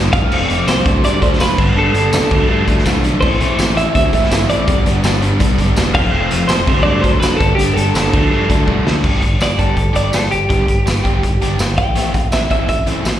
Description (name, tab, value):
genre	indie rock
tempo	165 BPM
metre	4/4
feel	straight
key	unclear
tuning	A4 = 439 Hz
part	overdriven electric guitar	riff	0.0-13.1 s	F2 to G4	-19 LUFS	equal	slapback echo
part	modern bright fingered electric bass	bass	0.0-13.2 s	F1 to G2	-19 LUFS	equal	none
part	twelve-string electric guitar	melody	0.1-12.9 s	G4 to G5	-19 LUFS	right 1 dB	slapback echo, plate reverb
part	mellow tine electric piano	second line	0.1-8.9 s	G5 to F6	-29 LUFS	right 1 dB	none
part	raw garage drum kit	drums	0.1-13.1 s	crash cymbal, hi-hat, kick drum, snare drum, tambourine	-16 LUFS	equal	none
room	little or no reverb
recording	live gig heard through the venue's PA, recital hall reverb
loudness	-12 LUFS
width	side -11 dB against mid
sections	0.0-9.0 A section; 9.0-13.2 B section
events	drum fill 8.7-9.0; clean electric guitar solo 9.0-13.2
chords	0.1 F; 0.9 D; 1.6 Gadd9; 2.3 Dm; 3.2 Am; 4.7 G; 5.9 F; 6.7 D; 7.4 Gadd9; 8.1 Dm; 9.0 G; 11.8 Am